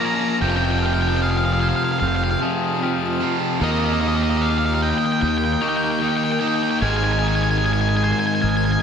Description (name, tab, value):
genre	post-rock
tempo	75 BPM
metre	4/4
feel	straight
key	Ab major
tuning	A4 = 440 Hz
part	octave-fuzz lead guitar	melody	0.0-8.8 s	Eb5 to Bb5	-24 LUFS	equal	distortion, analog delay
part	granular cloud pad	sustained chords	0.0-8.8 s	C4 to F5	-32 LUFS	left 1 dB	built-in reverb
part	glockenspiel with soft plastic mallets	arpeggios	0.0-8.8 s	Db6 to Ab6	-33 LUFS	right 4 dB	slapback echo, analog delay
part	twangy electric guitar	arpeggios	0.0-8.8 s	Eb3 to Eb5	-30 LUFS	equal	slapback echo, analog delay
part	crunchy overdriven guitar	riff	0.0-8.8 s	F2 to Eb4	-24 LUFS	left 9 dB	none
part	distorted electric guitar	riff	0.0-8.8 s	F2 to Eb4	-25 LUFS	right 10 dB	overdrive
part	fuzz fingered electric bass	bass	0.4-8.8 s	F1 to Eb2	-22 LUFS	right 1 dB	overdrive
room	moderate lush hall reverb, RT60 2.1 s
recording	big arena sound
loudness	-18 LUFS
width	side -7 dB against mid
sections	0.0-8.8 A section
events	none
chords	0.4 Fm; 3.6 Ebadd9; 6.8 Abadd9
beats	| 0.42 1.22 2.02 2.82 | 3.62 4.42 5.22 6.03 | 6.83 7.63 8.43